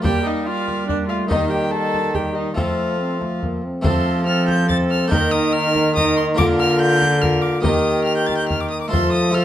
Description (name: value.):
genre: classical, renaissance-style consort dance.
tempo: 142 BPM.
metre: 3/4.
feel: straight.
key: F mixolydian.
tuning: A4 = 440 Hz.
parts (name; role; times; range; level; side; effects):
warm violin; melody; 0.0-9.4 s; D5 to A6; -24 LUFS; left 1 dB; none.
warm viola; second line; 0.0-9.4 s; D4 to Bb4; -26 LUFS; right 3 dB; none.
harpsichord; accompaniment; 0.0-9.4 s; D3 to Eb5; -26 LUFS; left 1 dB; none.
mellow trombone; accompaniment; 0.0-9.4 s; G3 to G4; -24 LUFS; left 2 dB; none.
warm cello; bass; 0.0-9.4 s; D3 to G3; -21 LUFS; equal; none.
frame drum; percussion; 0.0-9.1 s; none; -24 LUFS; equal; none.
room: moderate stone room reverb, RT60 1.0 s.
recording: none.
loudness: -16 LUFS.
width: side -11 dB against mid.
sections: 0.0-3.9 A section; 3.9-9.4 A section.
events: none.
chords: 0.0 Gm; 1.3 Eb; 2.6 F; 5.1 Eb5; 6.4 Bb/D; 7.6 Eb; 8.9 F.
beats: | 0.04 0.46 0.88 | 1.30 1.72 2.14 | 2.57 3.00 3.42 | 3.85 4.27 4.70 | 5.12 5.54 5.96 | 6.38 6.80 7.22 | 7.65 8.07 8.49 | 8.92 9.35.